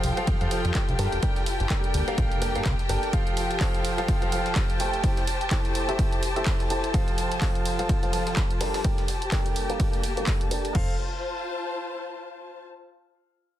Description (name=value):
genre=piano house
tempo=126 BPM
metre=4/4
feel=swing 57% on 16ths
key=F major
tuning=A4 = 440 Hz
part: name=dark studio violin section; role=sustained chords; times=0.0-10.8 s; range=G4 to G5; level=-34 LUFS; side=left 1 dB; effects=vintage 12-bit sampler grit, sidechain pumping
part: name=clear upright piano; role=riff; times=0.0-10.9 s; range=F3 to A5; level=-30 LUFS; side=right 1 dB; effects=sidechain pumping, low-pass filter, ping-pong delay
part: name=plucky analog bass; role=bass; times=0.0-3.0, 10.8-11.0 s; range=F1 to G2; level=-28 LUFS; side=equal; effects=sidechain pumping
part: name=breakbeat sampler-style drum kit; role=drums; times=0.0-10.7 s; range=hi-hat, ride cymbal, snare drum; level=-42 LUFS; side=right 3 dB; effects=none
part: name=punchy analog drum machine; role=drums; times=0.0-10.9 s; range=crash cymbal, handclaps, hi-hat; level=-34 LUFS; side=right 1 dB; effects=none
part: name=warm studio string section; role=texture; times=0.0-12.6 s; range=Bb3 to A5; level=-33 LUFS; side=left 2 dB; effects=sidechain pumping
part: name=electronic kick drum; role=drums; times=0.3-10.9 s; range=none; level=-26 LUFS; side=equal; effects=none
room=light reverb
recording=dense, heavily limited modern master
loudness=-23 LUFS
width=side -12 dB against mid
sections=0.0-10.8 A section; 10.8-12.7 B section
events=filter sweep on upright piano 0.0-10.8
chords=0.0 F; 1.0 Gmadd9; 3.1 F; 5.0 Am7; 6.9 F; 8.6 Gmadd9; 10.8 F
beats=0.27 0.75 | 1.23 1.70 2.18 2.65 | 3.13 3.61 4.08 4.56 | 5.04 5.51 5.99 6.46 | 6.94 7.42 7.89 8.37 | 8.85 9.32 9.80 10.27 | 10.75 11.23 11.70 12.18